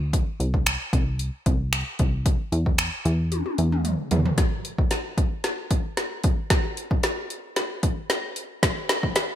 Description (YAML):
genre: dance-pop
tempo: 113 BPM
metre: 4/4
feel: straight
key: unclear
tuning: A4 = 441 Hz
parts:
  - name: plucky analog bass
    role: bass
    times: 0.0-4.3 s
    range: C2 to E2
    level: -24 LUFS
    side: equal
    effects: sidechain pumping
  - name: deep house drum kit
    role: drums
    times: 0.1-9.3 s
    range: finger snaps, hi-hat, kick drum, snare drum, toms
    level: -23 LUFS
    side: equal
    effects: gated reverb
room: light reverb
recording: bright 1980s-style digital production, high-pass filter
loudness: -22 LUFS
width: side -11 dB against mid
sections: 0.0-4.4 A section; 4.4-9.4 B section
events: drum fill 3.3-4.4, 4.4-9.4; build-up 4.4-9.4; filter sweep 4.4-9.4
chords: none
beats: | 0.13 0.66 1.20 1.73 | 2.26 2.79 3.32 3.85 | 4.38 4.91 5.44 5.97 | 6.50 7.04 7.57 8.10 | 8.63 9.16